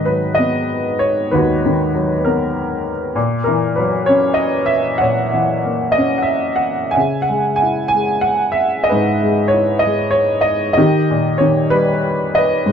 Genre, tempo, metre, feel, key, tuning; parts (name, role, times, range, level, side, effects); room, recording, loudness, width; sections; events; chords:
classical, lyrical solo piano; 64 BPM (dotted quarters); 6/8; rubato; G# minor; A4 = 440 Hz
clear upright piano; solo; 0.0-12.7 s; D#2 to G#5; -14 LUFS; equal
light reverb; -14 LUFS; side -7 dB against mid
0.0-12.7 A section
0.0 G#m9; 3.2 F#7/A#; 7.0 C#m9; 10.8 D#